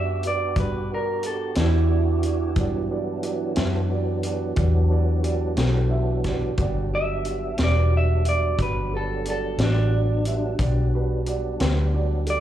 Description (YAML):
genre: slow blues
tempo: 60 BPM (dotted quarters)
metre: 12/8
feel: straight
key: E minor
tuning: A4 = 440 Hz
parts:
  - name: electric guitar through a small old amp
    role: melody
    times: 0.0-12.4 s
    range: D4 to E5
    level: -27 LUFS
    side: right 3 dB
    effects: slapback echo
  - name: dark concert grand piano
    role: accompaniment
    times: 0.0-12.4 s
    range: F#4 to E5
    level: -30 LUFS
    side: right 6 dB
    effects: slapback echo
  - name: tonewheel organ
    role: sustained chords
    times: 0.0-12.4 s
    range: E3 to G4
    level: -31 LUFS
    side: equal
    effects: overdrive, chorus vibrato, slow rotary speaker
  - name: vintage muted fingered electric bass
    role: bass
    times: 0.0-12.4 s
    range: E1 to G2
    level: -23 LUFS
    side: left 1 dB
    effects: none
  - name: vintage drum kit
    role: drums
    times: 0.2-12.4 s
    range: hi-hat, kick drum, snare drum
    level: -28 LUFS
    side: left 1 dB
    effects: slapback echo
room: small room ambience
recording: live gig heard through the venue's PA, club reverb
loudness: -20 LUFS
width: side -11 dB against mid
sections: 0.0-12.4 A section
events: none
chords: 0.0 Em7